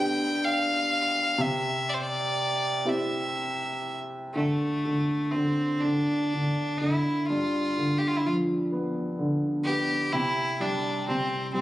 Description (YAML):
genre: celtic folk, Celtic slow air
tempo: 41 BPM (dotted quarters)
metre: 6/8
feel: rubato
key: unclear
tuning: A4 = 440 Hz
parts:
  - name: bright fiddle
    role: melody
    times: 0.0-11.6 s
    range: A3 to G5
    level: -28 LUFS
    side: equal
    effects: none
  - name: warm upright piano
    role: accompaniment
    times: 0.0-11.6 s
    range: G2 to G4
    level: -27 LUFS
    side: equal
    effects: none
room: moderate recital hall reverb, RT60 1.6 s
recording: recorded on a phone in the room, club reverb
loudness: -24 LUFS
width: side -15 dB against mid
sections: 0.0-4.3 A section; 4.3-11.6 B section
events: none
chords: 0.0 G; 1.4 C; 4.3 N.C.; 7.3 G7; 10.1 C5